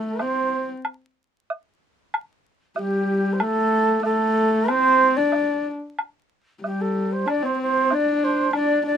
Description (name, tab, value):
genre	chinese traditional, Chinese chamber ensemble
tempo	94 BPM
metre	2/4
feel	rubato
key	unclear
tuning	A4 = 440 Hz
part	xiao	melody	0.0-0.7, 2.8-9.0 s	G4 to D5	-21 LUFS	right 2 dB	none
part	dark horsehead fiddle	second line	0.0-0.7, 2.8-9.0 s	G3 to D4	-23 LUFS	left 2 dB	none
part	woodblock	percussion	0.2-8.7 s	none	-26 LUFS	equal	none
room	light reverb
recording	minimal, uncompressed stereo recording, vinyl crackle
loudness	-19 LUFS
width	side -8 dB against mid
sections	0.0-6.0 A section; 6.0-9.0 B section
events	none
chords	none